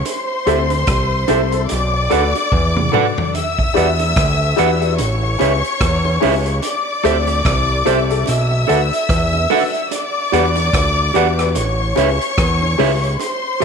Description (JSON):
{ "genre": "lovers rock reggae", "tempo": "73 BPM", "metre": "4/4", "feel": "swing 59% on 16ths", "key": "E minor", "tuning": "A4 = 439 Hz", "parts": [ { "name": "fat analog bass", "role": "bass", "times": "0.0-13.6 s", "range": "A1 to E2", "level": "-18 LUFS", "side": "equal", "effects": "none" }, { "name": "warm studio string section", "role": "second line", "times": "0.1-13.6 s", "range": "C5 to E6", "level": "-19 LUFS", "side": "left 2 dB", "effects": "none" }, { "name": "vintage drum kit", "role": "drums", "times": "0.1-13.6 s", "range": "hi-hat, kick drum, rim click, toms", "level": "-22 LUFS", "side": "equal", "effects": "none" }, { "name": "bongos", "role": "percussion", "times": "0.1-13.4 s", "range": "none", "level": "-31 LUFS", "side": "right 12 dB", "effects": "none" }, { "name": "clear grand piano", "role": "accompaniment", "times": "0.5-13.6 s", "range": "C4 to B4", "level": "-22 LUFS", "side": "left 12 dB", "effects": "slapback echo" }, { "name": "mellow electric guitar", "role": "stabs", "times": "0.5-13.6 s", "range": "G4 to F#5", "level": "-21 LUFS", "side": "right 12 dB", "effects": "none" } ], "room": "light reverb, studio reverb", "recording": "1960s-style stereo with parts hard left and right", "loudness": "-14 LUFS", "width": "side -6 dB against mid", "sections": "0.0-13.6 A section", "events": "drum fill 2.5-3.3", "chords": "0.1 D9sus4; 1.7 Bm7; 3.3 Em9; 5.0 A7; 6.6 D9sus4; 8.3 Bm7; 9.9 Em9; 11.6 A7" }